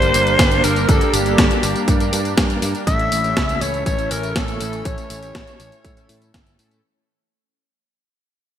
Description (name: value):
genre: italo disco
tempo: 121 BPM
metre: 4/4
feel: straight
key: unclear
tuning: A4 = 440 Hz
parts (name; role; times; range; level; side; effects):
- breathy alto saxophone; melody; 0.0-6.3 s; G4 to E5; -21 LUFS; equal; digital delay
- lush unison pad; sustained chords; 0.0-6.8 s; E3 to D4; -25 LUFS; right 1 dB; chorus
- chorused polysynth; stabs; 0.0-6.8 s; G2 to Bb4; -27 LUFS; left 2 dB; none
- picked electric bass; bass; 0.0-6.8 s; G1 to A2; -24 LUFS; equal; none
- clean 12-bit digital drum machine; drums; 0.0-6.8 s; hi-hat, snare drum, tambourine; -22 LUFS; equal; gated reverb
- electronic kick drum; drums; 0.4-6.4 s; none; -20 LUFS; equal; overdrive
room: moderate lush hall reverb, RT60 2.1 s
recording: bright 1980s-style digital production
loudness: -15 LUFS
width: side -10 dB against mid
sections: 0.0-6.8 A section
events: fade-out 1.5-6.8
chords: 0.0 Gm; 2.9 A